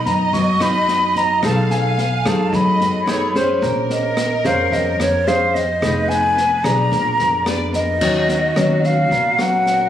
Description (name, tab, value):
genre	bossa nova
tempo	109 BPM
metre	4/4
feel	straight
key	Bb minor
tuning	A4 = 441 Hz
part	breathy mellow silver concert flute	melody	0.0-9.9 s	Db5 to C#6	-18 LUFS	equal	none
part	warm studio violin section	second line	0.0-9.9 s	Gb4 to F5	-27 LUFS	equal	none
part	nylon-string guitar	accompaniment	0.0-9.9 s	Bb2 to C5	-21 LUFS	left 1 dB	none
part	upright bass	bass	0.1-9.9 s	F1 to F#2	-23 LUFS	equal	none
part	open jazz drum kit	drums	0.1-9.7 s	crash cymbal, kick drum, rim click, snare drum	-26 LUFS	equal	none
room	little or no reverb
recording	recorded on a phone in the room, club reverb, compression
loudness	-15 LUFS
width	side -10 dB against mid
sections	0.0-8.0 A section; 8.0-9.9 B section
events	none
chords	0.0 Bmaj9#11; 1.4 B13; 3.6 Bbm9; 5.8 Fm7b5; 6.9 Bb7b9; 8.0 Ebm9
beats	0.33 0.88 | 1.43 1.98 2.53 3.08 | 3.62 4.17 4.72 5.27 | 5.82 6.37 6.92 7.47 | 8.02 8.56 9.11 9.66